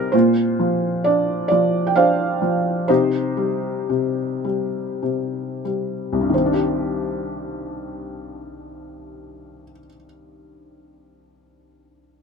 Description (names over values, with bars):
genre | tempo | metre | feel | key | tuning
classical, lyrical solo piano | 28-44 BPM (dotted quarters) | 6/8 | rubato | C minor | A4 = 440 Hz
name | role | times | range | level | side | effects
felt-muted upright piano | solo | 0.0-12.2 s | C2 to G5 | -19 LUFS | equal | none
room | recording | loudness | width
light reverb | close, detailed microphones | -18 LUFS | side -5 dB against mid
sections
0.1-6.3 A section; 6.3-10.4 B section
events
slowing down 0.1-6.3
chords
0.1 Bbadd9; 2.9 Cm; 6.3 Cmadd9